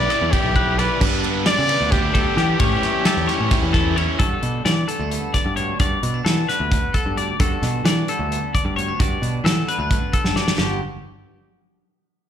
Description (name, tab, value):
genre	math rock and midwest emo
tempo	263 BPM (eighths)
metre	7/8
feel	straight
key	G lydian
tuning	A4 = 436 Hz
part	clear trumpet	melody	0.0-3.7 s	G4 to D5	-22 LUFS	left 1 dB	slapback echo, analog delay
part	twelve-string electric guitar	arpeggios	0.0-10.8 s	G4 to D5	-25 LUFS	left 6 dB	slapback echo
part	overdriven electric guitar	riff	0.0-4.2 s	G2 to E4	-23 LUFS	equal	slapback echo
part	picked electric bass	bass	0.0-10.8 s	G1 to E3	-23 LUFS	equal	none
part	loose indie drum kit	drums	0.1-10.7 s	crash cymbal, hi-hat, kick drum, ride cymbal, snare drum	-22 LUFS	equal	none
part	twangy electric guitar	accompaniment	4.2-10.8 s	D2 to F#4	-29 LUFS	right 8 dB	wide subtle chorus, slapback echo
room	studio ambience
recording	live gig heard through the venue's PA, club reverb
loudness	-17 LUFS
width	side -9 dB against mid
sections	0.0-4.2 A section; 4.2-10.6 B section; 10.6-12.2 C section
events	drum fill 10.2-10.6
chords	0.0 Em7; 1.0 G; 2.6 A7; 4.2 Gmaj9; 10.6 Gmaj7